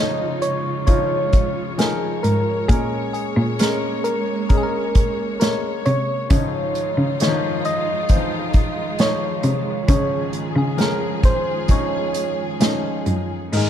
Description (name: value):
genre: pop ballad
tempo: 66 BPM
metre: 4/4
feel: straight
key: Db major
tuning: A4 = 440 Hz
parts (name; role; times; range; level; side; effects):
- soft struck synth lead; melody; 0.0-13.7 s; Ab4 to Eb5; -24 LUFS; right 1 dB; chorus
- warm baby grand piano; accompaniment; 0.0-13.7 s; Ab2 to Eb5; -25 LUFS; left 3 dB; none
- warm symphonic string section; sustained chords; 0.0-13.7 s; Db3 to Db5; -27 LUFS; right 1 dB; none
- warm cello; bass; 0.0-13.7 s; Gb2 to Db3; -22 LUFS; equal; none
- unplugged drum kit; drums; 0.4-13.3 s; hi-hat, kick drum, snare drum; -18 LUFS; equal; none
- downlifter; sound effects; 13.5-13.7 s; none; -25 LUFS; equal; none
room: light reverb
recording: dark, warm production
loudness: -18 LUFS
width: side -10 dB against mid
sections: 0.0-13.5 A section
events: none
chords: 0.0 Dbadd9; 2.7 Bbm7; 6.3 Dbadd9; 9.9 Db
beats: 0.88 1.79 | 2.69 3.60 4.50 5.41 | 6.30 7.20 8.10 8.99 | 9.89 10.79 11.70 12.61 | 13.53